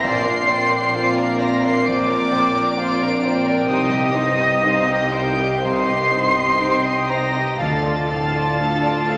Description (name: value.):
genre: cinematic, emotional film score for orchestra.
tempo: 58-66 BPM.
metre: 4/4.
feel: rubato.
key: Bb major.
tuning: A4 = 440 Hz.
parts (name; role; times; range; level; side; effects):
warm symphonic violin section; melody; 0.0-9.2 s; Eb6 to D7; -30 LUFS; equal; none.
bright concert flute; second line; 0.0-9.2 s; Eb5 to D6; -24 LUFS; equal; none.
mellow clarinet; second line; 0.0-9.2 s; D5 to G5; -31 LUFS; equal; none.
warm symphonic violin section; second line; 0.0-9.2 s; Eb4 to F5; -27 LUFS; equal; none.
dark symphonic viola section; accompaniment; 0.0-9.2 s; F3 to F4; -33 LUFS; equal; none.
felt-muted upright piano; accompaniment; 0.0-9.2 s; Bb1 to Bb4; -28 LUFS; equal; none.
mellow French horn section; sustained chords; 0.0-9.2 s; C4 to G4; -31 LUFS; equal; none.
concert harp; arpeggios; 0.0-9.2 s; Bb2 to Bb5; -32 LUFS; equal; none.
dark studio cello section; bass; 0.0-9.2 s; Bb2 to D3; -35 LUFS; equal; none.
dark symphonic double bass section; bass; 0.0-9.2 s; Bb1 to D2; -30 LUFS; equal; none.
room: wet scoring stage reverb, RT60 1.5 s.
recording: none.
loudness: -19 LUFS.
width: mono.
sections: 0.0-9.2 A section.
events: none.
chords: 0.0 Bbadd9; 3.7 Cm; 7.6 Dm.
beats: | 0.04 0.97 1.88 2.79 | 3.70 4.63 5.64 6.61 | 7.60 8.61.